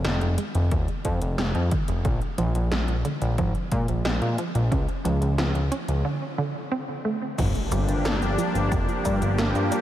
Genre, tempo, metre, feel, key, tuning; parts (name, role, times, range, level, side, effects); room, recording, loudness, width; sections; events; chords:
synthwave; 90 BPM; 4/4; straight; A4 = 440 Hz
wide unison pluck; arpeggios; 0.0-9.8 s; D3 to Db4; -30 LUFS; right 2 dB; analog delay
fat analog bass; bass; 0.0-9.7 s; Eb1 to Bb2; -24 LUFS; equal
80s electronic pad drums; drums; 0.0-9.8 s; cabasa, crash cymbal, hi-hat, snare drum; -33 LUFS; equal; overdrive
electronic kick drum; drums; 0.7-9.2 s; -27 LUFS; equal; overdrive
warm analog pad; sustained chords; 7.4-9.8 s; F3 to G4; -26 LUFS; left 1 dB; chorus, sidechain pumping
impact; sound effects; 7.4-9.8 s; -34 LUFS; left 1 dB
moderate huge ambient reverb, RT60 7.9 s; dreamy mix soaked in reverb; -22 LUFS; side -12 dB against mid
0.0-7.4 A section; 7.4-9.8 B section
break 6.0-7.4; impact 7.4-9.8
0.0 Fm7; 2.0 Bb7; 4.7 Db; 6.0 D5; 7.4 Gm7